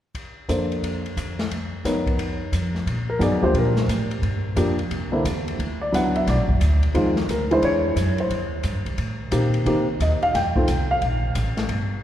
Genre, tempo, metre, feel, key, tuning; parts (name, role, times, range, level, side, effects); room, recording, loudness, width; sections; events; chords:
jazz piano trio; 177 BPM; 4/4; swing 64% on 8ths; Bb major; A4 = 440 Hz
open jazz drum kit; drums; 0.1-11.8 s; hi-hat, kick drum, ride cymbal, snare drum; -29 LUFS; left 1 dB
warm baby grand piano; melody; 0.5-11.3 s; D3 to G5; -23 LUFS; equal
upright bass; bass; 0.5-12.0 s; F#1 to C3; -24 LUFS; equal
wet church reverb, RT60 2.9 s; recorded in a church or concert hall; -20 LUFS; side -11 dB against mid
0.1-2.9 A section; 2.9-12.0 B section
0.1 Bbmaj9; 2.9 Bb6; 4.2 Gm7; 4.9 C; 5.6 D69; 6.9 Fm7; 7.6 E9; 8.3 Eb6; 9.7 Cm7; 10.3 F5; 11.0 Bb5